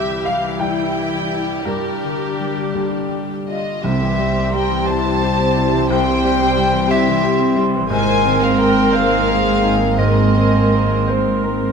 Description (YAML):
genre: cinematic, emotional film score for orchestra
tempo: 54-60 BPM (dotted quarters)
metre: 6/8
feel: rubato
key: C mixolydian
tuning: A4 = 439 Hz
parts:
  - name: warm studio violin section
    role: melody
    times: 0.0-11.1 s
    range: G4 to A5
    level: -26 LUFS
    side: left 4 dB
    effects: none
  - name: warm studio violin section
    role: second line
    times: 0.0-11.1 s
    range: F4 to G5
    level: -25 LUFS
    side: left 2 dB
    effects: none
  - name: clear baby grand piano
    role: accompaniment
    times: 0.0-11.7 s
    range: C2 to G5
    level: -24 LUFS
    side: left 2 dB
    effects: none
  - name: warm studio viola section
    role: accompaniment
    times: 0.0-11.7 s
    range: C3 to Bb4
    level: -23 LUFS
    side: right 1 dB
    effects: none
  - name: concert harp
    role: arpeggios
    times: 0.0-11.7 s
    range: G2 to Bb4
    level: -26 LUFS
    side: left 12 dB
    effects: none
  - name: warm studio cello section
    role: bass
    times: 0.0-11.7 s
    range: Ab2 to G4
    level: -23 LUFS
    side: right 5 dB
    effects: none
  - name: mellow hollow silver concert flute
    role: second line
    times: 3.5-11.1 s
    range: Eb5 to A5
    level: -22 LUFS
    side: left 2 dB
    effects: none
  - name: mellow cor anglais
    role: second line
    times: 3.8-11.7 s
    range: C5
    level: -25 LUFS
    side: right 4 dB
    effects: none
  - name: mellow French horn section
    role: sustained chords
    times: 3.8-11.7 s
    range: G3 to C4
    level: -24 LUFS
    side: left 3 dB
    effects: none
  - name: timpani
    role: percussion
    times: 3.8-4.8 s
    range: C3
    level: -25 LUFS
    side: right 4 dB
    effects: none
  - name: dark clarinet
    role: second line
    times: 3.9-11.7 s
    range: G4 to Bb4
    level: -27 LUFS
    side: left 1 dB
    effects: none
  - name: rich studio double bass section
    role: bass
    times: 3.9-11.7 s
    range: Ab1 to C2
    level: -23 LUFS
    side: right 5 dB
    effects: none
room: moderate scoring stage reverb, RT60 1.7 s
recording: close, detailed microphones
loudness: -14 LUFS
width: side -6 dB against mid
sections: 0.0-3.8 A section; 3.8-11.7 B section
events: none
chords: 0.0 C; 1.7 Gm; 3.8 C; 7.9 Abadd9